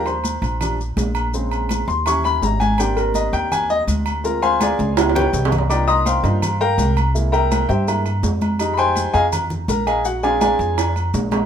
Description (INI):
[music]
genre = Afro-Cuban jazz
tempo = 165 BPM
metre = 4/4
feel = straight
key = Eb major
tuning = A4 = 440 Hz
[part]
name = warm upright piano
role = accompaniment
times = 0.0-10.9 s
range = Db3 to Eb6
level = -19 LUFS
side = left 2 dB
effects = none
[part]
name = upright bass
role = bass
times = 0.0-11.5 s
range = Ab1 to G2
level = -22 LUFS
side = equal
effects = none
[part]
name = agogo bells and timbales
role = percussion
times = 0.1-11.5 s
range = none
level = -24 LUFS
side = right 4 dB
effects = none
[part]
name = congas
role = percussion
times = 0.1-11.5 s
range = none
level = -26 LUFS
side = equal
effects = none
[part]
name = maracas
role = percussion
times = 0.1-11.5 s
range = none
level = -34 LUFS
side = left 6 dB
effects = none
[sound]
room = light reverb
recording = minimal, uncompressed stereo recording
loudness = -16 LUFS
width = side -8 dB against mid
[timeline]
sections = 0.0-11.5 A section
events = upright piano solo 0.0-11.5; drum fill 4.8-5.7, 10.8-11.5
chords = 0.0 Ebmaj9; 1.3 Bbm7; 2.1 Eb7b9; 2.8 Abmaj9#11; 4.2 Dm7b5; 5.0 Db7#11; 5.7 Cm11; 7.2 C7b13; 8.6 Fm9; 10.1 Bb7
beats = 0.24 0.61 0.97 | 1.34 1.70 2.06 2.43 | 2.79 3.16 3.52 3.88 | 4.25 4.61 4.98 5.34 | 5.70 6.07 6.43 6.79 | 7.15 7.52 7.88 8.24 | 8.60 8.97 9.33 9.69 | 10.05 10.42 10.78 11.14